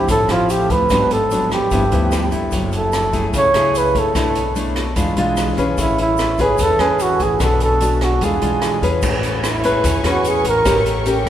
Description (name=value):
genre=bossa nova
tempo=148 BPM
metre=4/4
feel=straight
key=A major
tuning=A4 = 440 Hz
part: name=breathy flugelhorn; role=melody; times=0.0-11.3 s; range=E4 to C#5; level=-18 LUFS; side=right 2 dB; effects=none
part: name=nylon-string guitar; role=accompaniment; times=0.0-11.3 s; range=G2 to B4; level=-20 LUFS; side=left 2 dB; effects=none
part: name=upright bass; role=bass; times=0.0-11.3 s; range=F#1 to E2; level=-23 LUFS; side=equal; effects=none
part: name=open jazz drum kit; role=drums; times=0.1-11.3 s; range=crash cymbal, hi-hat, kick drum, rim click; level=-24 LUFS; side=equal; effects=none
part: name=egg shaker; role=percussion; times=0.1-11.3 s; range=none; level=-37 LUFS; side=left 7 dB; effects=none
part: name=warm studio string section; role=sustained chords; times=9.0-11.3 s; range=Bb4 to C#6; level=-27 LUFS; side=equal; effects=none
room=wet cathedral reverb, RT60 5.0 s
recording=recorded in a church or concert hall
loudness=-14 LUFS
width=side -11 dB against mid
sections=0.0-9.0 A section; 9.0-11.3 B section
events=flugelhorn solo 9.0-11.3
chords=0.0 Dm9; 0.9 G#m7b5; 1.7 G13; 2.5 F#m9; 4.1 Bm7; 5.0 E7b9; 5.8 Amaj9; 7.4 Bm7; 8.2 E7b9; 9.0 Amaj9; 10.7 A7b9